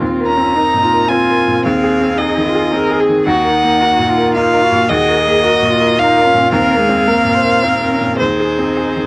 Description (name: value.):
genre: neoclassical piano and strings.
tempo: 110 BPM.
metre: 3/4.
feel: rubato.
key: Eb dorian.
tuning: A4 = 440 Hz.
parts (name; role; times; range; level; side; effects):
warm cello; second line; 0.0-9.1 s; Ab3 to Ab4; -22 LUFS; equal; none.
bright upright piano; accompaniment; 0.0-9.1 s; Eb2 to Bb4; -19 LUFS; equal; none.
rich viola; accompaniment; 0.0-9.1 s; Eb4 to C5; -22 LUFS; equal; none.
rich violin; melody; 0.3-9.1 s; C5 to Bb5; -17 LUFS; equal; none.
room: light reverb.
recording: close, detailed microphones.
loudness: -13 LUFS.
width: mono.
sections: 0.0-9.1 A section.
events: none.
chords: 0.0 Bbsus2/Eb; 1.6 Ab6/Eb; 3.3 Ebmadd9; 6.5 Bbsus2/Eb; 8.2 Ab/Eb.